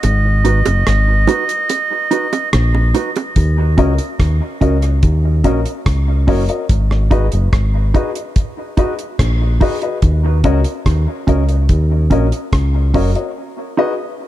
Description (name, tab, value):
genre	dub reggae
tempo	72 BPM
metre	4/4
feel	straight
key	Eb minor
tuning	A4 = 437 Hz
part	melodica	melody	0.0-2.5 s	Eb5	-20 LUFS	right 4 dB	dub echo
part	fingered electric bass	bass	0.0-13.1 s	Gb1 to Eb2	-14 LUFS	equal	none
part	damped 70s drum kit	drums	0.0-13.3 s	hi-hat, kick drum, rim click	-17 LUFS	equal	none
part	bongos	percussion	0.0-3.4 s	none	-24 LUFS	right 7 dB	dub echo
part	mellow electric guitar	accompaniment	0.4-13.9 s	Db4 to Cb5	-22 LUFS	right 4 dB	dub echo
part	dark upright piano	stabs	3.8-13.9 s	Gb4 to Eb5	-23 LUFS	left 5 dB	dub echo
room	small room ambience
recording	dark, warm production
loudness	-13 LUFS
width	side -14 dB against mid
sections	0.0-3.4 A section; 3.4-14.3 B section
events	break 0.0-3.4, 13.4-14.3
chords	0.0 Abm7; 3.4 Ebm7; 6.7 Abm7; 10.0 Ebm7; 13.4 Abm7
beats	| 0.03 0.87 1.70 2.53 | 3.37 4.20 5.03 5.86 | 6.70 7.53 8.36 9.20 | 10.03 10.86 11.69 12.53 | 13.36